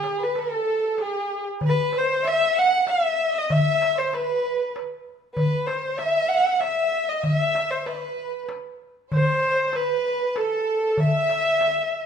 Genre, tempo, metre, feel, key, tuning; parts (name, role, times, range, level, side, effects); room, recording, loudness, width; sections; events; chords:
Arabic maqam ensemble; 96 BPM; 3/4; straight; E maqam suznak; A4 = 440 Hz
dark violin; melody; 0.0-12.1 s; G4+45c to F#5; -22 LUFS; left 1 dB
rich studio violin section; second line; 0.0-12.1 s; G#4-50c to F#5; -28 LUFS; right 3 dB
darbuka; percussion; 0.0-12.0 s; -26 LUFS; equal
moderate recital hall reverb, RT60 1.4 s; minimal, uncompressed stereo recording, lossy compression artefacts; -20 LUFS; side -7 dB against mid
0.0-12.1 A section